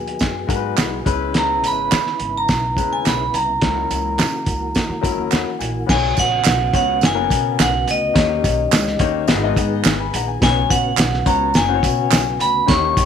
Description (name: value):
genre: uptempo 1960s-style soul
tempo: 106 BPM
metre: 4/4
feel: straight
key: B major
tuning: A4 = 436 Hz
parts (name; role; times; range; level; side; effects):
- vibraphone with hard mallets; melody; 0.0-13.1 s; D#5 to C#6; -20 LUFS; equal; none
- mellow tonewheel organ; sustained chords; 0.0-13.1 s; C#3 to G#4; -29 LUFS; equal; slow rotary speaker, chorus vibrato
- upright bass; bass; 0.0-13.1 s; F#1 to C#3; -25 LUFS; equal; none
- cloth-damped thuddy drum kit; drums; 0.1-13.1 s; crash cymbal, hi-hat, kick drum, snare drum; -19 LUFS; right 1 dB; none
- tambourine and handclaps; percussion; 0.2-13.1 s; none; -26 LUFS; right 14 dB; none
- clear upright piano; accompaniment; 0.5-13.1 s; F#3 to B5; -24 LUFS; left 14 dB; none
room: light reverb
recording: 1960s-style stereo with parts hard left and right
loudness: -16 LUFS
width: side -8 dB against mid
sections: 0.0-5.9 A section; 5.9-13.1 B section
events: upright piano fill 5.0-5.9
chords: 0.0 G#m7; 1.1 C#m7; 3.6 F#7/C#; 5.9 Bsus2; 8.2 D#7; 9.3 G#m; 10.4 Bsus2